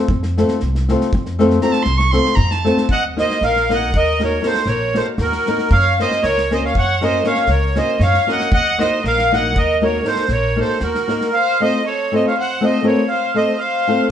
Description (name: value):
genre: balkan folk, Balkan wedding band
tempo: 235 BPM (eighths)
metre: 11/8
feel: straight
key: F phrygian dominant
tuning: A4 = 440 Hz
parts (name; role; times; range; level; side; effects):
- flamenco guitar; accompaniment; 0.0-14.1 s; A3 to Bb4; -19 LUFS; left 2 dB; none
- upright bass; bass; 0.1-11.0 s; Bb1 to Gb2; -20 LUFS; equal; none
- loose indie drum kit; percussion; 0.1-11.3 s; kick drum, snare drum; -24 LUFS; equal; none
- rich violin; second line; 1.6-14.1 s; Gb4 to Db6; -23 LUFS; right 1 dB; none
- accordion; melody; 2.9-14.1 s; Bb4 to Gb5; -18 LUFS; right 1 dB; light tremolo tuning
room: moderate stone room reverb, RT60 1.2 s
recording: band playing live in one room, nothing above 10.4 kHz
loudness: -14 LUFS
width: side -9 dB against mid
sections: 0.0-2.9 A section; 2.9-14.1 B section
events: violin solo 0.0-2.9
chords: 0.0 F; 2.9 Ebm; 5.7 Gb; 8.5 Ebm; 11.3 F